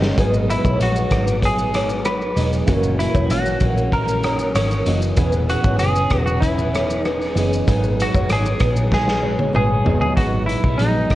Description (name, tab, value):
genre	indie pop, bedroom pop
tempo	96 BPM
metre	4/4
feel	straight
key	G# minor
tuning	A4 = 440 Hz
part	electric guitar at the edge of break-up	accompaniment	0.0-11.2 s	F#2 to G#4	-27 LUFS	left 4 dB	wide subtle chorus, vibrato effect
part	warbly lo-fi synth keys	accompaniment	0.0-11.2 s	E3 to D#5	-27 LUFS	right 3 dB	chorus, cassette tape
part	vintage muted picked electric bass	bass	0.0-11.2 s	E1 to B1	-22 LUFS	equal	none
part	raw garage drum kit	drums	0.0-11.2 s	hi-hat, kick drum, rim click, shaker, snare drum, toms	-21 LUFS	equal	none
part	kalimba	second line	0.2-10.0 s	A#4 to D#5	-25 LUFS	right 1 dB	ensemble chorus, slapback echo
part	semi-hollow electric guitar	melody	0.5-11.2 s	D#4 to C#5	-23 LUFS	equal	lush chorus, slapback echo
room	light reverb, small room ambience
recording	worn, warbling old tape, cassette tape, warbly pitch drift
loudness	-16 LUFS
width	side -15 dB against mid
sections	0.0-10.2 A section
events	drum fill 0.0, 8.9-10.2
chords	0.2 G#m7; 2.7 F#7; 5.2 E6; 7.7 G#m7